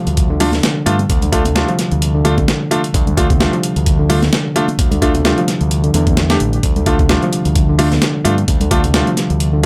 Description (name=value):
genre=breakbeat, breaks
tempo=130 BPM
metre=4/4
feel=swing 56% on 16ths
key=unclear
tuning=A4 = 444 Hz
part: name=reed electric piano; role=riff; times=0.0-9.7 s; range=C3 to D4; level=-21 LUFS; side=equal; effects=overdrive, low-pass filter, digital delay
part: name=growling fingered electric bass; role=bass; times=0.1-9.7 s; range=A1 to G2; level=-20 LUFS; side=equal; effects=overdrive
part: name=breakbeat sampler-style drum kit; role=drums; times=0.1-9.7 s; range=hi-hat, kick drum, snare drum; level=-19 LUFS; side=equal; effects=none
part: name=electronic hi-hat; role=drums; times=0.1-9.7 s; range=none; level=-30 LUFS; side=equal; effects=overdrive
part: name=clear concert grand piano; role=stabs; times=0.4-9.7 s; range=A3 to G4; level=-21 LUFS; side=equal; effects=digital delay
part: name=congas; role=percussion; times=0.4-9.7 s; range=none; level=-26 LUFS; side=equal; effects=none
room=light reverb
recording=none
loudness=-15 LUFS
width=mono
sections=0.0-9.7 A section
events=none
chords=0.0 Dm